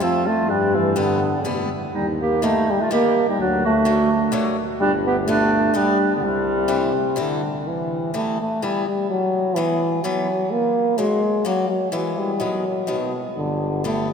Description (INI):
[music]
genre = alpine folk, alpine dance band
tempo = 126 BPM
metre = 3/4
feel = rubato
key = E minor from 7.7 s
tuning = A4 = 444 Hz
[part]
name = clear euphonium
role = melody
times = 0.0-14.1 s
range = B2 to B3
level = -20 LUFS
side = equal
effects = none
[part]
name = mellow clarinet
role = second line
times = 0.0-7.2 s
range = G3 to G4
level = -26 LUFS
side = right 3 dB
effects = none
[part]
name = picked swing-style acoustic guitar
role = accompaniment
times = 0.0-14.1 s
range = C#3 to C4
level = -29 LUFS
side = left 4 dB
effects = none
[part]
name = warm tuba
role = bass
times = 0.5-7.2, 13.4-14.1 s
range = G1 to G2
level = -26 LUFS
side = equal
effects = none
[sound]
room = wet cathedral reverb, RT60 6.3 s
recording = recorded in a church or concert hall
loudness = -18 LUFS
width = side -6 dB against mid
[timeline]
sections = 0.0-7.7 A section; 7.7-14.1 B section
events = none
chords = 0.5 G; 1.9 Eb; 3.4 D; 4.8 G; 6.2 C; 7.7 Em; 9.1 Bsus4; 10.5 F#; 11.9 Bsus4; 12.4 B; 13.4 G